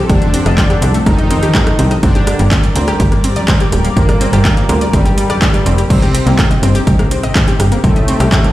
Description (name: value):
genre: melodic techno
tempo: 124 BPM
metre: 4/4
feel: straight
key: C dorian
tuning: A4 = 440 Hz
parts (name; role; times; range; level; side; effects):
- lush unison pad; sustained chords; 0.0-8.5 s; C3 to D5; -22 LUFS; equal; chorus, phaser, sidechain pumping
- analog pluck; arpeggios; 0.0-8.5 s; A3 to Eb5; -20 LUFS; left 1 dB; chorus, sidechain pumping, dub echo
- tight sequencer bass; bass; 0.0-8.5 s; D1 to G2; -14 LUFS; equal; sidechain pumping
- analog synth brass; melody; 0.1-8.5 s; G2 to Eb4; -19 LUFS; equal; chorus, sidechain pumping, tape echo
- deep house drum kit; drums; 0.1-8.5 s; crash cymbal, handclaps, hi-hat, rim click; -20 LUFS; equal; overdrive, studio reverb, sidechain pumping on hats, sidechain pumping on cymbals
- electronic kick drum; drums; 0.1-8.4 s; none; -13 LUFS; equal; overdrive, studio reverb
room: digital ambience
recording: played on a big sound system in a bare room, large studio reverb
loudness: -10 LUFS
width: side -15 dB against mid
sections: 0.0-8.5 A section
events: none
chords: 0.0 Fadd9; 2.0 Gm; 5.9 Cm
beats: | 0.10 0.58 1.06 1.55 | 2.03 2.52 3.00 3.48 | 3.97 4.45 4.93 5.42 | 5.90 6.39 6.87 7.35 | 7.84 8.32